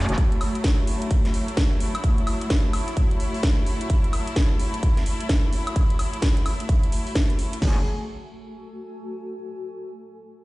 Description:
bass house; 129 BPM; 4/4; swing 62% on 16ths; F# minor; A4 = 444 Hz
clear symphonic string section; sustained chords; 0.0-7.8 s; F#3 to G#4; -30 LUFS; left 1 dB; sidechain pumping
metallic wobble bass; bass; 0.0-0.2, 7.6-7.8 s; F#1; -24 LUFS; equal; chorus, overdrive, sidechain pumping
granular cloud pad; texture; 0.0-9.4 s; A3 to A5; -36 LUFS; equal; built-in reverb, sidechain pumping
house drum kit; drums; 0.1-7.6 s; hi-hat, snare drum, woodblock; -29 LUFS; equal; overdrive
big-room dance drum kit; drums; 0.2-7.8 s; crash cymbal, kick drum, snare drum; -21 LUFS; equal
digital ambience; played on a big sound system in a bare room, large studio reverb, nothing above 10.6 kHz; -20 LUFS; side -20 dB against mid
0.0-7.6 A section; 7.6-9.5 B section
fade-out on ambient pad 0.0-7.6
0.0 F#madd9

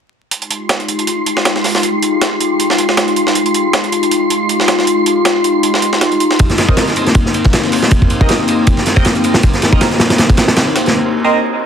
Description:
drum and bass, jungle; 158 BPM; 4/4; swing 55% on 16ths; F minor; A4 = 440 Hz
warbly tape-like pad; sustained chords; 0.5-10.9 s; Ab3 to G4; -15 LUFS; left 2 dB; chorus, built-in reverb
breakbeat sampler-style drum kit; drums; 0.3-10.9 s; hi-hat, snare drum; -17 LUFS; right 2 dB; high-pass filter on hats, high-pass filter on snare
wind-like tuned noise texture; texture; 0.6-10.9 s; C6; -22 LUFS; right 2 dB; built-in reverb
vintage drum kit; drums; 6.4-10.9 s; kick drum, ride cymbal, snare drum; -12 LUFS; equal
band-passed chord stab; stabs; 6.7-11.4 s; C4 to Eb5; -19 LUFS; right 3 dB; phaser, lush chorus, dub echo
moderate digital room reverb, RT60 1.2 s, studio ambience; dense, heavily limited modern master, vinyl crackle; -10 LUFS; side -8 dB against mid
0.3-11.7 A section
filter sweep on ambient pad 0.3-11.7; break 10.9-11.7
0.3 Fm9; 6.4 Cm7

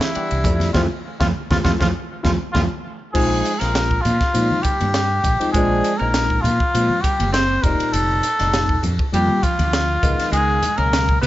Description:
electric jazz fusion; 100 BPM; 4/4; swing 53% on 16ths; F lydian; A4 = 440 Hz
trumpet with cup mute; melody; 0.0-11.3 s; E4 to C5; -21 LUFS; left 1 dB
hollow-body jazz guitar; second line; 0.0-11.3 s; E3 to C4; -27 LUFS; right 4 dB
crisp fusion drum kit; drums; 0.0-11.3 s; crash cymbal, hi-hat, kick drum, ride cymbal, snare drum; -23 LUFS; equal
barky tine electric piano; accompaniment; 0.2-11.3 s; Bb2 to G4; -25 LUFS; left 3 dB; phaser
mellow fretless electric bass; bass; 0.2-11.3 s; F1 to Db3; -22 LUFS; equal; wide subtle chorus
congas; percussion; 0.4-11.3 s; -28 LUFS; left 1 dB
light reverb; nothing above 7.7 kHz; -16 LUFS; side -15 dB against mid
0.0-3.1 A section; 3.1-11.3 B section
band accent 0.8-3.1; drum fill 2.6-3.1
0.5 Fmaj7; 3.1 Bb9sus4; 7.6 F9sus4; 10.0 Db9sus4

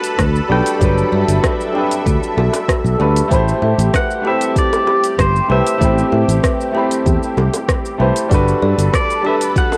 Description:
sunset chillout; 96 BPM; 4/4; straight; A dorian; A4 = 439 Hz
pedal steel guitar; melody; 0.0-9.8 s; B4 to G5; -24 LUFS; equal; cassette tape, tape echo
clear concert grand piano; accompaniment; 0.0-9.8 s; F#3 to B5; -21 LUFS; equal; vintage 12-bit sampler grit, cassette tape, tape echo
lush unison pad; sustained chords; 0.0-9.8 s; G4 to B5; -26 LUFS; equal; chorus, phaser, cassette tape
kalimba; arpeggios; 0.0-9.8 s; F#4 to E5; -26 LUFS; equal; cassette tape, tape echo
smooth R&B drum kit; drums; 0.0-9.8 s; hi-hat, rim click, shaker; -25 LUFS; equal; overdrive, cassette tape
fingered electric bass; bass; 0.2-8.9 s; G1 to A2; -18 LUFS; equal; tube saturation
electronic kick drum; drums; 0.2-9.7 s; -20 LUFS; equal; overdrive, cassette tape
bongos; percussion; 1.1-9.8 s; -27 LUFS; equal
moderate spring reverb, RT60 2.2 s; home recording on cassette; -15 LUFS; mono
0.0-9.8 A section
0.0 Gmaj9; 3.3 Am9; 8.3 Gmaj9

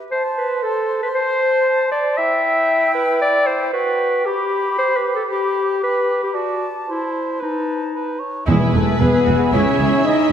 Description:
cinematic, heroic adventure film score; 115 BPM; 4/4; straight; G major; A4 = 438 Hz
mellow cor anglais; second line; 0.1-10.3 s; E4 to E5; -26 LUFS; right 3 dB
mellow silver concert flute; second line; 0.1-10.3 s; G5 to B5; -26 LUFS; left 1 dB
warm clarinet; second line; 0.1-10.3 s; D#4 to E5; -19 LUFS; left 1 dB
rich symphonic violin section; melody; 8.5-10.3 s; B4 to E5; -26 LUFS; left 4 dB
rich studio violin section; second line; 8.5-10.3 s; E4 to G#4; -28 LUFS; left 1 dB
bright symphonic viola section; accompaniment; 8.5-10.3 s; G#3 to G#4; -27 LUFS; right 1 dB
clear French horn section; sustained chords; 8.5-10.3 s; G#3 to D#4; -18 LUFS; left 2 dB
dark trumpet section; stabs; 8.5-10.3 s; G#4 to D#5; -23 LUFS; right 1 dB
rich symphonic cello section; bass; 8.5-9.9 s; C#2 to E2; -22 LUFS; right 3 dB
warm studio double bass section; bass; 8.5-9.9 s; E1 to C#2; -23 LUFS; right 4 dB
timpani; percussion; 8.5-9.2 s; E2; -21 LUFS; left 1 dB
wet concert hall reverb, RT60 2.4 s; -16 LUFS; side -9 dB against mid
0.0-8.5 A section; 8.5-10.3 B section
0.1 Am; 2.2 Em; 4.3 G; 6.3 D5/F#; 7.4 B7/D#; 8.5 E; 9.5 C#m

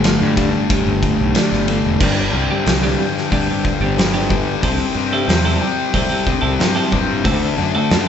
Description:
quiet-loud alternative rock; 92 BPM; 4/4; straight; A4 = 440 Hz
twelve-string electric guitar; arpeggios; 0.0-8.0 s; G3 to A4; -20 LUFS; right 2 dB
fuzz guitar; riff; 0.0-8.1 s; G2 to D4; -19 LUFS; left 6 dB; distortion
fuzz fingered electric bass; bass; 0.0-8.1 s; E1 to G2; -21 LUFS; equal; overdrive
oversized low-tuned drum kit; drums; 0.0-8.1 s; crash cymbal, hi-hat, kick drum, ride cymbal, snare drum; -20 LUFS; right 1 dB
light reverb; band playing live in one room, nothing above 8.0 kHz; -14 LUFS; side -8 dB against mid
0.0-2.0 A section; 2.0-8.1 B section
0.0 Gsus2; 2.0 Gsus4; 4.6 C6; 7.3 D7

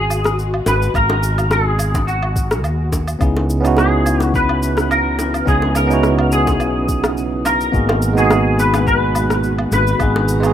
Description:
sunset chillout; 106 BPM; 4/4; swing 54% on 16ths; C# dorian; A4 = 440 Hz
clean electric guitar; melody; 0.0-10.5 s; F#4 to B4; -20 LUFS; equal; ensemble chorus, ping-pong delay
dark studio string section; sustained chords; 0.0-10.5 s; B2 to A#5; -28 LUFS; left 1 dB
fretless electric bass; bass; 0.0-10.5 s; G#1 to D#2; -19 LUFS; equal
electronic woodblock, cabasa and rim click; drums; 0.1-10.5 s; -23 LUFS; equal; overdrive, small room ambience
bongos; percussion; 0.2-10.3 s; -25 LUFS; equal
electronic kick drum; drums; 0.9-10.1 s; -20 LUFS; equal; overdrive, small room ambience
bell-like tine electric piano; accompaniment; 3.2-10.5 s; G#3 to G#4; -18 LUFS; moving between left 3 dB and right 6 dB; auto-pan, ping-pong delay
little or no reverb; rough home demo mix; -14 LUFS; side -10 dB against mid
0.0-10.5 A section
0.0 G#m7; 3.2 C#m7; 7.7 G#m7

